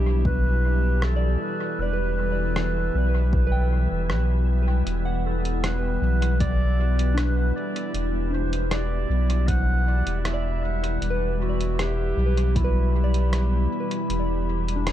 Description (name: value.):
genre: ambient dub.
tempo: 78 BPM.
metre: 4/4.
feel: straight.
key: E minor.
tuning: A4 = 439 Hz.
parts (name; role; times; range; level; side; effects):
mellow clarinet; melody; 0.0-14.9 s; E4 to F#5; -30 LUFS; equal; tape echo.
soft additive organ-like pad; sustained chords; 0.0-14.9 s; B2 to E4; -30 LUFS; equal; ensemble chorus, built-in reverb.
soft synth bell; arpeggios; 0.0-14.9 s; D4 to G5; -34 LUFS; right 1 dB; chorus, tape echo.
warm sub bass; bass; 0.0-14.9 s; E1 to B1; -22 LUFS; equal; none.
electronic kick drum; drums; 0.3-12.7 s; none; -26 LUFS; equal; none.
lo-fi sampler-style drum kit; drums; 1.0-14.9 s; hi-hat, rim click; -32 LUFS; equal; dub echo.
room: digital ambience.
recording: echo-heavy mix.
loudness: -21 LUFS.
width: side -12 dB against mid.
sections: 0.0-14.9 A section.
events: none.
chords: 0.0 Em7.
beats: 0.25 1.02 | 1.79 2.56 3.33 4.10 | 4.87 5.63 6.41 7.17 | 7.94 8.71 9.48 10.25 | 11.02 11.79 12.56 13.33 | 14.10 14.87.